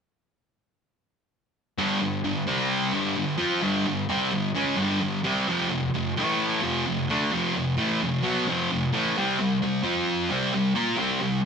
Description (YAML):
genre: rock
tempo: 130 BPM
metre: 4/4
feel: straight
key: unclear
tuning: A4 = 440 Hz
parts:
  - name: thick fuzz guitar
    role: solo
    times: 1.8-11.4 s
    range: F2 to Bb4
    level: -23 LUFS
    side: equal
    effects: distortion
room: wet studio reverb, RT60 0.8 s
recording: band playing live in one room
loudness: -23 LUFS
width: side -6 dB against mid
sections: 1.8-11.5 A section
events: none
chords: 1.8 G5; 2.5 C5; 2.9 G5; 5.5 F5; 6.2 A5; 6.6 F5; 9.2 C5; 9.8 F5; 10.3 C5